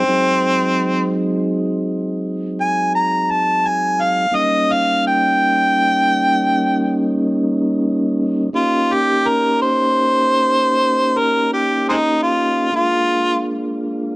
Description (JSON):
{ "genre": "blues", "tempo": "57 BPM (dotted quarters)", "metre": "12/8", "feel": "straight", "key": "Eb mixolydian", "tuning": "A4 = 440 Hz", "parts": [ { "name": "clear harmonica", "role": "melody", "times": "0.0-13.4 s", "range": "Ab3 to Bb5", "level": "-15 LUFS", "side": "equal", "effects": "overdrive" }, { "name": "mellow tonewheel organ", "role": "sustained chords", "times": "0.0-14.2 s", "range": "Gb3 to G4", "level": "-19 LUFS", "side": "equal", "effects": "slow rotary speaker" } ], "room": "light reverb", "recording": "worn, warbling old tape, cassette tape, warbly pitch drift", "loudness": "-15 LUFS", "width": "side -22 dB against mid", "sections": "0.0-14.2 A section", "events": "harmonica solo 0.0-14.2", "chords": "0.0 Ab7; 4.3 Eb7; 12.7 Bb7", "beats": "| 0.09 1.15 2.20 3.26 | 4.31 5.37 6.42 7.48 | 8.53 9.58 10.64 11.69 | 12.74 13.79" }